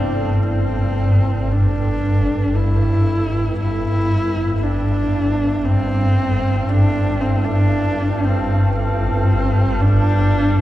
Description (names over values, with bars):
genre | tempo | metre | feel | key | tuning
dark ambient drone | 58 BPM | 4/4 | straight | unclear | A4 = 440 Hz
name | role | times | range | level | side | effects
warm horsehead fiddle | melody | 0.0-10.6 s | C4 to E4 | -21 LUFS | equal | diffuse ambient delay
deep dark ambient pad | sustained chords | 0.0-10.6 s | C3 to E5 | -32 LUFS | right 1 dB | none
swarming drone | drone | 0.0-10.6 s | G1 to G2 | -17 LUFS | equal | built-in reverb
room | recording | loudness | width
wet cathedral reverb, RT60 6.6 s | dark, warm production | -16 LUFS | side -14 dB against mid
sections
0.5-10.6 A section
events
none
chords
0.5 C